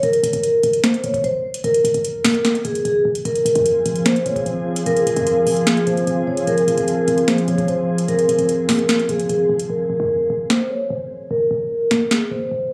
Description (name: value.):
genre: hip hop, trap.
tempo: 149 BPM.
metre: 4/4.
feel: half-time.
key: F minor.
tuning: A4 = 438 Hz.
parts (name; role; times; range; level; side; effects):
vibraphone with medium mallets; melody; 0.0-12.7 s; Ab4 to Db5; -21 LUFS; equal; low-pass filter.
short 808-style bass; bass; 0.0-12.7 s; E1 to F2; -32 LUFS; equal; none.
booming analog drum machine; drums; 0.0-12.2 s; hi-hat, kick drum, snare drum; -23 LUFS; equal; overdrive.
glassy FM pad; sustained chords; 3.3-9.7 s; F3 to Ab4; -25 LUFS; equal; ensemble chorus, built-in reverb.
room: light reverb.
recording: recorded on a phone in the room, club reverb.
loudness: -19 LUFS.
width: mono.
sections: 0.0-9.7 A section; 9.7-12.7 B section.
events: break 9.7-12.7; filter sweep on vibraphone 9.7-12.7.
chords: 0.0 F5; 3.3 Fm; 9.7 F5.